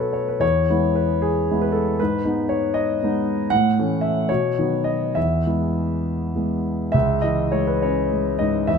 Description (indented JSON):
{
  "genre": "classical, romantic character piece for solo piano",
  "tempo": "66-80 BPM (dotted quarters)",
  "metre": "6/8",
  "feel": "rubato",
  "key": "E major",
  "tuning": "A4 = 439 Hz",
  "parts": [
    { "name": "warm concert grand piano", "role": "solo", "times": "0.0-8.8 s", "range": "C#2 to F#5", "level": "-19 LUFS", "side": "equal", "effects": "none" }
  ],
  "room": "moderate large studio reverb, RT60 1.4 s",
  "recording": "close, detailed microphones",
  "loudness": "-19 LUFS",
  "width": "side -6 dB against mid",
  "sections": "0.0-6.9 A section; 6.9-8.8 B section",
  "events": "none",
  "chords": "0.4 E; 2.0 G#m; 3.5 A; 4.3 B; 5.2 E; 6.9 C#m"
}